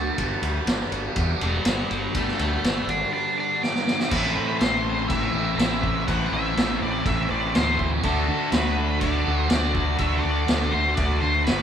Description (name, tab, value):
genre	classic rock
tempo	122 BPM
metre	4/4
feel	straight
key	A dorian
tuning	A4 = 442 Hz
part	octave-fuzz lead guitar	melody	0.0-11.6 s	A4 to D6	-27 LUFS	left 1 dB	distortion
part	distorted electric guitar	riff	0.0-11.6 s	G2 to F#4	-32 LUFS	left 7 dB	distortion
part	overdriven electric guitar	riff	0.0-11.6 s	G2 to F#4	-29 LUFS	right 4 dB	phaser
part	fuzz fingered electric bass	bass	0.0-11.6 s	E1 to D3	-27 LUFS	equal	overdrive
part	vintage drum kit	drums	0.2-11.6 s	crash cymbal, kick drum, ride cymbal, snare drum	-26 LUFS	equal	none
part	cranked stack guitar	riff	4.1-11.6 s	A2 to F#4	-30 LUFS	left 1 dB	overdrive
room	moderate studio reverb, RT60 0.5 s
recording	band playing live in one room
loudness	-21 LUFS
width	side -8 dB against mid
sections	0.0-4.1 A section; 4.1-11.6 B section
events	lead electric guitar solo 0.0-4.1; drum fill 3.6-4.1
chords	0.2 Gadd9; 4.1 Am; 8.0 D